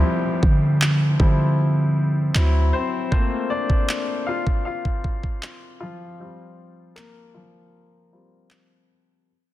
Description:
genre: contemporary R&B.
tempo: 78 BPM.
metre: 4/4.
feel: straight.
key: F major.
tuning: A4 = 437 Hz.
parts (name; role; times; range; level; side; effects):
clear baby grand piano; accompaniment; 0.0-9.3 s; F3 to F5; -26 LUFS; left 3 dB; low-pass filter.
clean 808-style bass; bass; 0.0-2.7 s; D2 to D3; -18 LUFS; right 1 dB; none.
downlifter; sound effects; 0.0-3.1 s; none; -37 LUFS; right 1 dB; none.
smooth R&B drum kit; drums; 0.4-8.7 s; handclaps, kick drum; -22 LUFS; equal; none.
room: digital ambience.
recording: dense, heavily limited modern master.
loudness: -18 LUFS.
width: side -14 dB against mid.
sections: 0.0-9.3 A section.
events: fade-out 0.0-9.3; grand piano solo 0.0-9.3; filter sweep on grand piano 0.0-9.3; break 7.7-9.3.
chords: 0.0 Dm11; 2.4 D7; 3.1 Fadd11; 6.2 Fsus24.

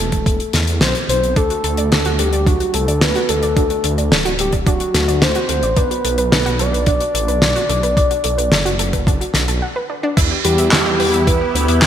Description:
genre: synthwave.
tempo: 109 BPM.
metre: 4/4.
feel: straight.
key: E minor.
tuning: A4 = 438 Hz.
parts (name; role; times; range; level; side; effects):
soft octave-layered synth lead; melody; 0.0-11.8 s; F#4 to D5; -19 LUFS; left 1 dB; chorus, digital delay.
dark detuned saw bass; bass; 0.0-11.9 s; D1 to E2; -20 LUFS; equal; tube saturation, sidechain pumping.
damped 70s drum kit; drums; 0.1-11.9 s; crash cymbal, handclaps, hi-hat, snare drum; -18 LUFS; left 1 dB; gated reverb.
electronic kick drum; drums; 0.1-11.4 s; none; -17 LUFS; equal; overdrive.
analog pluck; arpeggios; 1.4-11.9 s; D4 to F#5; -24 LUFS; right 2 dB; chorus, ping-pong delay.
lush unison pad; sustained chords; 10.5-11.9 s; B3 to G4; -22 LUFS; equal; chorus, phaser, sidechain pumping.
room: moderate lush hall reverb, RT60 2.5 s.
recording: bright 1980s-style digital production.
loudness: -14 LUFS.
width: side -10 dB against mid.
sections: 0.0-10.2 A section; 10.2-11.9 B section.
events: break 9.6-10.2.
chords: 0.0 E5; 1.4 D; 5.8 Bm7; 10.2 Em.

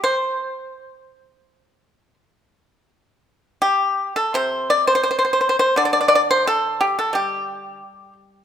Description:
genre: chinese traditional, Chinese solo plucked strings.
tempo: 76-89 BPM.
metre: 4/4.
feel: rubato.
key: unclear.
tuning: A4 = 441 Hz.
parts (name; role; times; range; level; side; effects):
pipa; solo; 0.0-8.4 s; C3 to D5; -17 LUFS; equal; none.
room: light reverb.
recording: minimal, uncompressed stereo recording.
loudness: -17 LUFS.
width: side -9 dB against mid.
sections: 0.0-2.9 A section; 2.9-8.4 B section.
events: none.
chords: none.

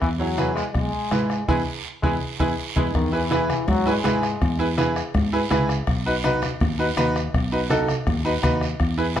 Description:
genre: latin, cumbia.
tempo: 164 BPM.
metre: 4/4.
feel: straight.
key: E major.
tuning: A4 = 441 Hz.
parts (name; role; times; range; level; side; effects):
bright trombone; second line; 0.0-4.7 s; D#3 to G#3; -27 LUFS; left 2 dB; none.
fingered electric bass; bass; 0.0-9.2 s; B1 to G#2; -25 LUFS; equal; none.
bombo; percussion; 0.0-9.2 s; none; -27 LUFS; left 1 dB; none.
guiro; percussion; 0.0-9.2 s; none; -35 LUFS; right 7 dB; none.
bright upright piano; accompaniment; 0.2-9.2 s; D#4 to C#5; -24 LUFS; right 2 dB; none.
congas; percussion; 0.4-9.2 s; none; -30 LUFS; equal; none.
room: wet studio reverb, RT60 0.8 s.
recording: heard from further back in the room.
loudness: -20 LUFS.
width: side -10 dB against mid.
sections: 0.0-3.0 A section; 3.0-9.2 B section.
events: trombone solo 0.0-3.0; band accent 1.5-3.0; drum fill 2.2-3.0.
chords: 0.0 E; 5.9 B.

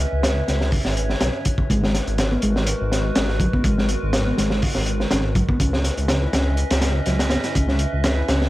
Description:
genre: breakbeat, breaks.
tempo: 123 BPM.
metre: 4/4.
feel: swing 54% on 16ths.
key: G# minor.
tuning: A4 = 440 Hz.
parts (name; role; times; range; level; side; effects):
warbly tape-like pad; sustained chords; 0.0-8.5 s; G#3 to E5; -28 LUFS; equal; chorus, built-in reverb, sidechain pumping.
dark detuned saw bass; bass; 0.0-8.5 s; G#1 to C#2; -22 LUFS; equal; tube saturation.
crunchy breakbeat drum kit; drums; 0.2-8.5 s; hi-hat, kick drum, snare drum; -22 LUFS; equal; none.
picked electric bass; riff; 1.7-8.5 s; F#3 to E4; -26 LUFS; equal; tube saturation, tape echo.
room: small room ambience.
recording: vinyl crackle.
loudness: -18 LUFS.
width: side -16 dB against mid.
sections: 0.0-8.5 A section.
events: none.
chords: 0.0 C#m7; 1.7 G#m9; 5.6 C#m9.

